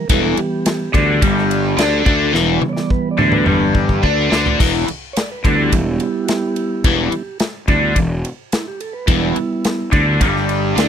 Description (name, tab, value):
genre	blues rock power trio and southern rock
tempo	107 BPM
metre	4/4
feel	straight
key	E minor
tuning	A4 = 440 Hz
part	mellow tonewheel organ	sustained chords	0.0-10.9 s	E3 to D5	-22 LUFS	right 4 dB	slow rotary speaker
part	overdriven electric guitar	riff	0.1-10.9 s	E2 to D4	-16 LUFS	left 2 dB	phaser
part	fuzz fingered electric bass	bass	0.1-10.9 s	E1 to D2	-20 LUFS	equal	overdrive
part	big rock drum kit	drums	0.1-10.9 s	crash cymbal, kick drum, ride cymbal, snare drum, toms	-19 LUFS	equal	none
room	little or no reverb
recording	dry, close 1970s-style studio recording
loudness	-14 LUFS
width	side -8 dB against mid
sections	0.0-4.6 A section; 4.6-10.9 A section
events	tonewheel organ solo 0.0-10.9; drum fill 2.3-4.6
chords	0.0 Em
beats	| 0.10 0.66 1.22 1.78 | 2.35 2.91 3.47 4.03 | 4.59 5.16 5.72 6.28 | 6.84 7.41 7.97 8.53 | 9.09 9.65 10.22 10.78